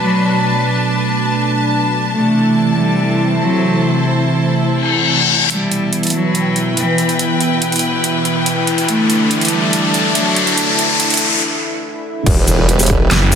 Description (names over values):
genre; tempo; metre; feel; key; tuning
heavy wobble dubstep; 142 BPM; 4/4; half-time; E minor; A4 = 441 Hz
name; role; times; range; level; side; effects
rich cello; melody; 0.0-10.7 s; E3 to A3; -18 LUFS; equal; ping-pong delay
lush unison pad; sustained chords; 0.0-13.4 s; B2 to G4; -18 LUFS; right 1 dB; chorus, sidechain pumping
clear studio string section; texture; 0.0-13.4 s; C3 to A5; -19 LUFS; left 1 dB; sidechain pumping
reverse cymbal, riser and impact; sound effects; 4.8-13.4 s; none; -18 LUFS; left 3 dB; none
big-room dance drum kit; drums; 5.5-13.4 s; crash cymbal, handclaps, hi-hat, shaker, snare drum; -18 LUFS; right 2 dB; overdrive, high-pass filter on hats, low-pass filter on hats, high-pass filter on cymbals, low-pass filter on cymbals, high-pass filter on perc, low-pass filter on perc, high-pass filter on snare, low-pass filter on snare
formant-sweep wobble bass; bass; 12.3-13.1 s; E1; -14 LUFS; equal; chorus, overdrive
electronic kick drum; drums; 12.3-13.0 s; none; -15 LUFS; equal; overdrive
snarling distorted saw bass; bass; 13.1-13.4 s; F#1; -12 LUFS; equal; distortion, overdrive
room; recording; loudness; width
moderate digital room reverb, RT60 1.1 s, digital ambience; high-pass filter; -12 LUFS; side -7 dB against mid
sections
0.0-5.5 A section; 5.5-12.3 B section; 12.3-13.4 C section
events
filter sweep on analog synth pad 0.0-5.5; reverse cymbal 4.8-5.5; build-up 5.5-12.3; riser 5.5-11.4; filter sweep 5.5-12.3; break 11.4-12.3; drop 12.3-13.4; impact 12.3-13.4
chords
0.0 Bm7; 2.1 Am/C; 5.5 Em; 8.9 Dsus2; 12.3 Em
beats
0.01 | 0.43 0.86 1.28 1.70 | 2.12 2.55 2.97 3.39 | 3.81 4.24 4.66 5.08 | 5.50 5.93 6.35 6.77 | 7.19 7.62 8.04 8.46 | 8.88 9.31 9.73 10.15 | 10.57 11.00 11.42 11.84 | 12.27 12.69 13.11